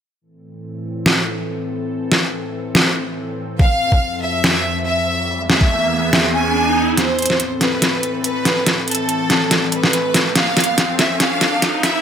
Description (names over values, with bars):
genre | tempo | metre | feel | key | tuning
heavy wobble dubstep | 142 BPM | 4/4 | swing 54% on 16ths, half-time | A harmonic minor | A4 = 441 Hz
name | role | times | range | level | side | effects
evolving wavetable pad | sustained chords | 0.2-12.0 s | E2 to A4 | -23 LUFS | equal | chorus, built-in reverb, sidechain pumping
dubstep drum kit | drums | 1.1-11.9 s | hi-hat, snare drum | -16 LUFS | equal | none
clear studio violin section | melody | 3.6-12.0 s | A4 to G#5 | -20 LUFS | equal | digital delay
electronic kick drum | drums | 3.6-5.7 s | none | -14 LUFS | equal | none
riser | sound effects | 5.0-12.0 s | none | -25 LUFS | left 1 dB | none
room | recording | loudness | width
moderate lush hall reverb, RT60 1.9 s | high-pass filter | -15 LUFS | side -8 dB against mid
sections
0.2-7.0 A section; 7.0-12.0 B section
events
filter sweep on ambient pad 0.2-7.0; riser 5.0-7.0, 7.0-12.0; kick drops out 6.1-7.0; build-up 7.0-12.0; drum fill 7.0-12.0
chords
0.2 Am; 3.6 F; 5.3 E; 7.0 Am; 10.4 F